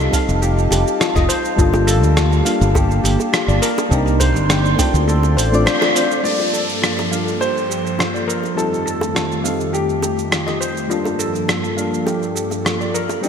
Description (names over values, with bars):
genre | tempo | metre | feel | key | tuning
sunset chillout | 103 BPM | 4/4 | straight | G minor | A4 = 440 Hz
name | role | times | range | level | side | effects
soft electric-piano-like synth keys | accompaniment | 0.0-13.3 s | G3 to D5 | -23 LUFS | equal | chorus, auto-pan, low-pass filter, digital delay
airy breathy pad | sustained chords | 0.0-13.3 s | F2 to C6 | -23 LUFS | equal | chorus
modern bright fingered electric bass | bass | 0.0-5.7 s | F1 to D2 | -16 LUFS | equal | none
dusty soul sampler-style drum kit | drums | 0.0-13.3 s | hi-hat, rim click, shaker | -22 LUFS | right 1 dB | overdrive, gated reverb
steel pan | arpeggios | 0.1-13.3 s | F4 to G5 | -24 LUFS | left 3 dB | low-pass filter, digital delay
electronic kick drum | drums | 0.1-4.9 s | none | -20 LUFS | equal | overdrive
bongos | percussion | 0.1-13.2 s | none | -29 LUFS | equal | none
clear baby grand piano | melody | 6.2-10.6 s | G4 to D5 | -24 LUFS | left 1 dB | digital delay
downlifter | sound effects | 6.2-10.9 s | none | -28 LUFS | equal | none
room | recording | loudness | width
wet lush hall reverb, RT60 2.7 s | bright 1980s-style digital production | -15 LUFS | side -7 dB against mid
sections
0.0-6.2 A section; 6.2-13.3 B section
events
band accent 5.7; filter sweep on synth keys 6.2-13.3; filter sweep on analog synth pad 6.2-13.3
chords
0.0 F9; 1.6 Gm9; 3.9 Cm9; 5.1 Dm7; 6.2 Gm9; 8.6 F9; 10.9 Gm9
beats
0.42 1.01 | 1.59 2.17 2.75 3.34 | 3.92 4.50 5.08 5.67 | 6.25 6.83 7.41 8.00 | 8.58 9.16 9.74 10.33 | 10.91 11.49 12.07 12.66 | 13.24